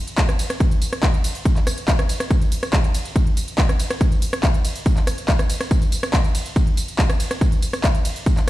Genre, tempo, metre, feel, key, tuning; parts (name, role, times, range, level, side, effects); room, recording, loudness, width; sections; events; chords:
techno; 141 BPM; 4/4; straight
techno drum kit; drums; 0.1-8.5 s; handclaps, hi-hat, ride cymbal, rim click, tambourine; -24 LUFS; equal; overdrive
electronic kick drum; drums; 0.2-8.4 s; -18 LUFS; equal; overdrive
little or no reverb; played on a big sound system in a bare room, stone room reverb; -17 LUFS; side -16 dB against mid
0.0-8.5 A section